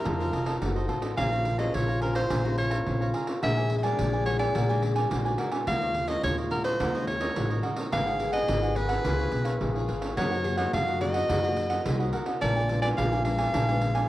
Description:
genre	samba and choro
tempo	107 BPM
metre	4/4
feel	straight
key	Bb minor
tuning	A4 = 436 Hz
part	clear soprano saxophone	melody	0.0-14.1 s	Bb4 to F5	-30 LUFS	equal	none
part	cavaquinho	accompaniment	0.0-14.1 s	D4 to Bb5	-33 LUFS	right 3 dB	none
part	nylon-string guitar	accompaniment	0.0-14.1 s	Ab2 to C5	-36 LUFS	left 2 dB	none
part	breathy trombone	second line	0.1-13.8 s	F4 to Ab4	-34 LUFS	left 3 dB	none
part	upright bass	bass	0.1-14.0 s	F1 to Gb2	-30 LUFS	equal	none
part	pandeiro	percussion	0.1-14.1 s	none	-32 LUFS	right 2 dB	none
room	light reverb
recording	worn, warbling old tape, cassette tape, warbly pitch drift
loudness	-24 LUFS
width	side -15 dB against mid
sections	0.0-1.2 A section; 1.2-14.1 B section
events	none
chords	0.0 F7b9; 1.2 Bbm9; 3.4 Bbaug7; 5.7 Ebm11; 7.9 Abm9; 9.0 Db6; 10.2 Gb69; 12.4 Bb7b9

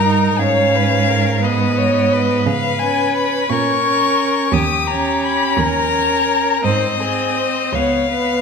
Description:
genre	classical, slow romantic movement for string quartet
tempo	58 BPM (dotted quarters)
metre	6/8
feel	rubato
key	unclear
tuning	A4 = 440 Hz
part	clear violin	melody	0.0-8.4 s	D#5 to D#6	-18 LUFS	left 8 dB	none
part	rich violin	second line	0.0-8.4 s	G4 to C#5	-21 LUFS	left 2 dB	none
part	clear viola	accompaniment	0.0-8.4 s	B3 to D#4	-21 LUFS	right 4 dB	none
part	rich cello	bass	0.0-8.4 s	C#2 to C#3	-20 LUFS	right 5 dB	none
room	wet recital hall reverb, RT60 1.7 s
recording	minimal, uncompressed stereo recording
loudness	-14 LUFS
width	side -6 dB against mid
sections	0.0-8.4 A section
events	none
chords	0.4 G#m; 2.5 C#7; 3.5 A#m; 4.5 D#7; 6.6 G#; 7.7 C#7

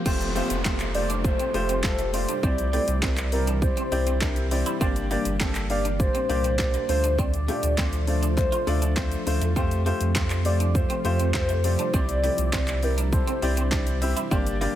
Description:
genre	dance-pop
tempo	101 BPM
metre	4/4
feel	straight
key	F major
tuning	A4 = 440 Hz
part	warm baby grand piano	accompaniment	0.0-14.8 s	A3 to F5	-29 LUFS	left 2 dB	sidechain pumping
part	ethereal airy pad	sustained chords	0.0-14.8 s	Bb2 to G4	-34 LUFS	equal	ensemble chorus, built-in reverb, sidechain pumping
part	clean electric guitar	riff	0.1-14.7 s	A3 to F4	-35 LUFS	right 4 dB	ensemble chorus
part	warm sub bass	bass	0.1-14.7 s	F1 to F2	-26 LUFS	equal	sidechain pumping
part	house drum kit	drums	0.1-14.8 s	crash cymbal, handclaps, hi-hat, kick drum, shaker, snare drum	-27 LUFS	equal	none
part	downlifter	sound effects	0.1-4.8 s	none	-36 LUFS	right 1 dB	none
part	group handclap	percussion	0.7-13.9 s	none	barely audible	none	none
part	warm velvety synth lead	melody	0.9-14.0 s	Bb4 to D5	-29 LUFS	equal	chorus
room	little or no reverb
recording	none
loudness	-22 LUFS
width	side -12 dB against mid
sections	0.1-14.8 A section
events	none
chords	0.1 Fadd9; 2.4 Cadd9; 4.8 Gm; 6.9 Dm7; 9.6 Fadd9; 11.9 Cadd9

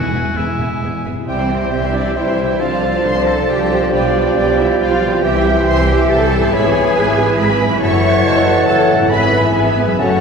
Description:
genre	classical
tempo	138 BPM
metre	3/4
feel	rubato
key	C major, E major from 6.5 s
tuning	A4 = 440 Hz
part	bright oboe	second line	0.0-10.2 s	E4 to B5	-25 LUFS	equal	none
part	clear studio violin section	second line	0.0-10.2 s	B4 to C#6	-25 LUFS	left 2 dB	none
part	dark French horn section	sustained chords	0.0-10.2 s	E3 to B4	-21 LUFS	left 1 dB	none
part	concert harp	arpeggios	0.0-10.2 s	F#2 to C#5	-24 LUFS	left 4 dB	none
part	timpani	percussion	0.0-0.6 s	E2	-25 LUFS	right 1 dB	none
part	rich symphonic violin section	melody	0.1-10.2 s	B4 to C#6	-26 LUFS	left 2 dB	none
part	rich symphonic viola section	accompaniment	0.1-10.2 s	D3 to C5	-23 LUFS	right 2 dB	none
part	rich symphonic cello section	bass	0.1-10.2 s	E2 to C#5	-21 LUFS	right 2 dB	none
part	warm symphonic double bass section	bass	0.1-10.2 s	E1 to C2	-20 LUFS	right 2 dB	none
part	dark clarinet	second line	1.3-10.2 s	D5 to G#5	-23 LUFS	right 1 dB	none
part	silver concert flute	second line	1.3-10.2 s	A4 to G5	-22 LUFS	left 2 dB	none
part	mellow bassoon	accompaniment	1.3-10.2 s	C#3 to G3	-21 LUFS	right 3 dB	none
room	wet concert hall reverb, RT60 2.4 s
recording	heard from further back in the room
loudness	-12 LUFS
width	side -6 dB against mid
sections	0.0-1.3 A section; 1.3-10.2 B section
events	none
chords	0.0 E; 1.3 C; 2.6 Dm7/C; 3.9 G7/B; 5.2 C; 6.5 E/G#; 7.8 F#m7; 9.1 E/G#

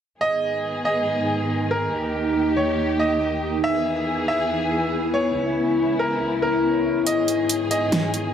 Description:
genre	heavy wobble dubstep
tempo	140 BPM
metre	4/4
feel	half-time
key	G# harmonic minor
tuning	A4 = 440 Hz
part	clear grand piano	melody	0.2-8.3 s	A#4 to E5	-24 LUFS	right 1 dB	none
part	dark studio string section	sustained chords	0.2-8.3 s	C#2 to G#4	-26 LUFS	equal	none
part	deep dark ambient pad	texture	1.1-8.3 s	D#4 to C#6	-24 LUFS	left 1 dB	chorus, built-in reverb
part	dubstep drum kit	drums	7.1-8.2 s	hi-hat, snare drum	-23 LUFS	right 1 dB	overdrive
room	moderate lush hall reverb, RT60 1.9 s, small room reverb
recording	none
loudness	-20 LUFS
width	side -8 dB against mid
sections	0.2-8.3 A section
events	none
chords	0.2 G#m; 1.9 D#; 3.6 E; 5.4 C#m7; 7.1 G#m

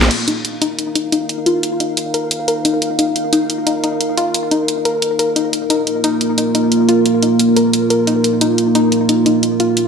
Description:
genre	dark technical drum and bass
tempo	177 BPM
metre	4/4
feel	straight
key	unclear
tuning	A4 = 439 Hz
part	dark analog pad	sustained chords	0.0-9.9 s	Bb3 to F5	-16 LUFS	right 1 dB	chorus
part	drum and bass drum kit	drums	0.0-9.8 s	crash cymbal, hi-hat, snare drum	-19 LUFS	right 1 dB	studio reverb
part	soft round pluck	arpeggios	0.3-9.7 s	Eb4 to Bb4	-18 LUFS	left 3 dB	chorus, cassette tape, tape echo
room	wet lush hall reverb, RT60 1.8 s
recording	dreamy mix soaked in reverb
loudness	-13 LUFS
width	side -6 dB against mid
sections	0.1-9.9 A section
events	filter sweep on synth pluck 0.1-9.9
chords	0.1 Eb5; 5.5 Bb5

